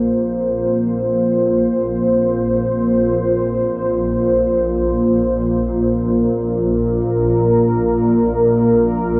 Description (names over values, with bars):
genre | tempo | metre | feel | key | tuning
dark ambient drone | free time | none | none | unclear | A4 = 440 Hz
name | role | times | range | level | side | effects
deep dark ambient pad | sustained chords | 0.0-9.2 s | Bb3 to C5 | -17 LUFS | equal | chorus, built-in reverb
swarming drone | drone | 0.0-9.2 s | Bb1 to Bb2 | -27 LUFS | equal | built-in reverb
room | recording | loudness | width
wet plate reverb, RT60 3.6 s | dreamy mix soaked in reverb | -17 LUFS | mono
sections
0.0-9.2 A section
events
fade-in on synth drone 0.0-9.2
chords
0.0 Bbsus2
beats
free time